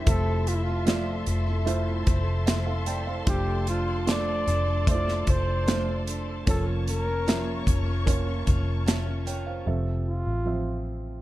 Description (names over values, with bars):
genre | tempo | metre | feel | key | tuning
pop ballad | 75 BPM | 4/4 | straight | F major | A4 = 440 Hz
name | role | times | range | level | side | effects
warm concert grand piano | accompaniment | 0.0-11.2 s | C3 to A5 | -32 LUFS | right 3 dB | none
dark symphonic string section | sustained chords | 0.0-9.6 s | Bb3 to Db6 | -37 LUFS | left 3 dB | none
picked steel-string acoustic guitar | arpeggios | 0.0-9.7 s | F3 to C5 | -37 LUFS | left 1 dB | none
vintage muted fingered electric bass | bass | 0.0-11.2 s | F1 to A1 | -28 LUFS | equal | none
mellow flugelhorn | melody | 0.1-10.8 s | E4 to D5 | -32 LUFS | equal | tape echo
modern studio drum kit | drums | 0.1-9.5 s | hi-hat, kick drum, snare drum | -25 LUFS | equal | none
room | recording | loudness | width
little or no reverb | dark, warm production | -24 LUFS | side -15 dB against mid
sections
0.0-9.7 A section; 9.7-11.2 B section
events
grand piano fill 1.7-3.3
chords
0.1 Fmaj7; 6.5 Bbm/F; 9.7 Fmaj7